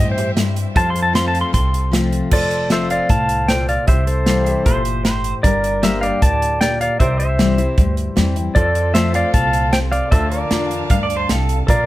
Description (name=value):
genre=honky-tonk and classic country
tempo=154 BPM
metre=4/4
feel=straight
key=F major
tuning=A4 = 440 Hz
part: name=pedal steel guitar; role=melody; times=0.0-11.9 s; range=A4 to C6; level=-19 LUFS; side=equal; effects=none
part: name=honky-tonk upright piano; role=accompaniment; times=0.0-11.9 s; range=D4 to A5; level=-31 LUFS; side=right 3 dB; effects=none
part: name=picked steel-string acoustic guitar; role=accompaniment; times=0.0-11.9 s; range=F2 to G4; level=-23 LUFS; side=left 4 dB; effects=none
part: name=dark studio violin section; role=sustained chords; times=0.0-2.3, 8.5-11.9 s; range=C4 to A5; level=-32 LUFS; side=left 1 dB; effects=none
part: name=pedal steel guitar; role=sustained chords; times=0.0-11.9 s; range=G4 to A5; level=-30 LUFS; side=left 2 dB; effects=none
part: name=upright bass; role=bass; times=0.0-11.9 s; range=F1 to G2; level=-21 LUFS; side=equal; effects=none
part: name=natural country drum kit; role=drums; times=0.2-11.8 s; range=crash cymbal, hi-hat, kick drum, snare drum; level=-18 LUFS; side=equal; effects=none
part: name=pedal steel guitar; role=second line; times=4.7-5.3, 10.9-11.6 s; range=A4 to F5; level=-23 LUFS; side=right 4 dB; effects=none
room=little or no reverb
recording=close, detailed microphones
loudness=-14 LUFS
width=side -16 dB against mid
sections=0.0-2.3 A section; 2.3-11.9 B section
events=pedal steel guitar solo 0.0-2.3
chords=0.0 C; 0.8 F; 3.9 C; 5.4 Gm; 7.0 C; 8.6 F; 10.1 Dm